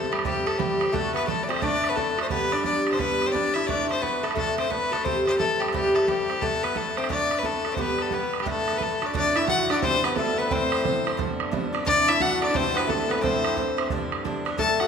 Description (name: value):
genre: celtic folk, Celtic hornpipe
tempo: 176 BPM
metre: 4/4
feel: swing 63% on 8ths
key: D mixolydian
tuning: A4 = 440 Hz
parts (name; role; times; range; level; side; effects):
- bright fiddle; melody; 0.0-14.9 s; G4 to A5; -25 LUFS; left 3 dB; none
- metal-body resonator slide guitar; second line; 0.0-14.9 s; G3 to A4; -30 LUFS; left 2 dB; none
- Irish bouzouki; accompaniment; 0.0-14.9 s; G2 to G4; -28 LUFS; equal; none
- bodhran; percussion; 0.1-14.9 s; none; -30 LUFS; right 6 dB; none
- hammered dulcimer; second line; 9.1-14.9 s; A3 to A4; -30 LUFS; right 2 dB; none
room: moderate concert hall reverb, RT60 2.2 s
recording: recorded in a church or concert hall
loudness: -22 LUFS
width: side -6 dB against mid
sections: 0.0-9.1 A section; 9.1-14.9 B section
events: none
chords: 0.0 C; 0.9 D; 2.3 G; 3.7 D; 5.0 C; 6.4 D; 7.8 G; 8.5 D; 9.8 C; 10.5 Am; 11.2 G; 11.9 D; 12.6 C; 13.2 Am; 13.9 G